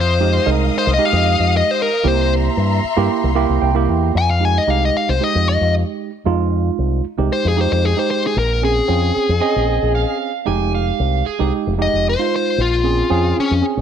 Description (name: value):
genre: blues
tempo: 114 BPM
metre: 4/4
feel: straight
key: F minor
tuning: A4 = 440 Hz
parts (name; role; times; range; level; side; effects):
- dark smooth lead guitar; melody; 0.0-13.6 s; Db4 to Ab5; -18 LUFS; left 4 dB; overdrive
- rich studio string section; sustained chords; 0.0-4.1 s; Eb5 to Eb6; -24 LUFS; left 3 dB; none
- fingered electric bass with an envelope filter; bass; 0.0-13.8 s; F1 to G2; -18 LUFS; left 1 dB; none
- tine electric piano; accompaniment; 0.2-13.8 s; Ab3 to G5; -20 LUFS; right 10 dB; auto-pan
- overdriven slide guitar; second line; 9.4-11.5 s; Ab4 to Ab5; -23 LUFS; right 10 dB; none
room: moderate echo chamber reverb, RT60 1.5 s, digital ambience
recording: 1960s-style stereo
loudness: -15 LUFS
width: side -8 dB against mid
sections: 0.0-4.2 A section; 4.2-13.8 B section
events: lead electric guitar solo 0.0-4.2; tine electric piano fill 3.4-4.2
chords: 0.0 Fm7; 2.0 C7; 4.2 Fm7; 8.4 Bbm7; 10.5 Fm7; 12.6 Bbm7